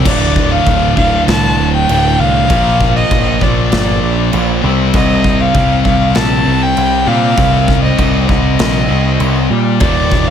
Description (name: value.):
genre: heavy metal.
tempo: 98 BPM.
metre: 4/4.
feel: straight.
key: unclear.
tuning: A4 = 441 Hz.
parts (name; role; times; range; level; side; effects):
scooped high-gain guitar; riff; 0.0-10.3 s; D2 to C4; -16 LUFS; left 11 dB; distortion.
sludgy distorted guitar; riff; 0.0-10.3 s; D2 to C4; -17 LUFS; right 11 dB; overdrive.
growling picked electric bass; bass; 0.0-10.3 s; D1 to Bb2; -16 LUFS; equal; overdrive.
dark violin; melody; 0.1-10.3 s; D5 to A5; -16 LUFS; equal; none.
big rock drum kit; drums; 0.1-10.3 s; crash cymbal, kick drum, snare drum; -17 LUFS; equal; none.
room: small room ambience.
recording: none.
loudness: -10 LUFS.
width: side -8 dB against mid.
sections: 0.1-10.3 A section.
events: half time 0.1-10.3.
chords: 0.1 D5; 2.5 Bb; 4.6 Cm.